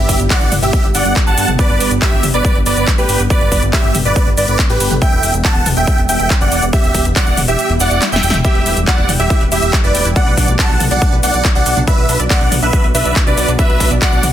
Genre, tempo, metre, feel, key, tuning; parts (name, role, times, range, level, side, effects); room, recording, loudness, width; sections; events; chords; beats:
uplifting trance; 140 BPM; 4/4; straight; E minor; A4 = 439 Hz
dense compressed supersaw; melody; 0.0-14.3 s; G4 to A5; -17 LUFS; right 1 dB; sidechain pumping, dub echo
warm concert grand piano; second line; 0.0-14.3 s; B4 to A5; -25 LUFS; left 1 dB; sidechain pumping, dub echo
plucky analog bass; bass; 0.0-14.3 s; E1 to G2; -18 LUFS; equal; sidechain pumping
big-room dance drum kit; drums; 0.1-14.3 s; handclaps, hi-hat, shaker, snare drum, toms; -19 LUFS; left 1 dB; studio reverb, sidechain pumping on hats, sidechain pumping on perc, sidechain pumping on toms
electronic kick drum; drums; 0.1-14.1 s; -14 LUFS; equal; studio reverb
swell; sound effects; 7.7-8.4 s; -27 LUFS; left 1 dB
wide unison pluck; arpeggios; 8.4-14.3 s; D4 to G5; -26 LUFS; right 3 dB; sidechain pumping, dub echo
little or no reverb; dense, heavily limited modern master; -11 LUFS; side -11 dB against mid
0.0-14.3 A section
kick drops out 7.6-8.4; swell 7.7-8.4; drum fill 8.0-8.4
0.0 G; 5.0 Em; 10.2 Bm
0.30 0.73 1.16 | 1.59 2.02 2.45 2.88 | 3.30 3.73 4.16 4.59 | 5.02 5.45 5.88 6.30 | 6.73 7.16 7.59 8.02 | 8.45 8.88 9.30 9.73 | 10.16 10.59 11.02 11.45 | 11.88 12.30 12.73 13.16 | 13.59 14.02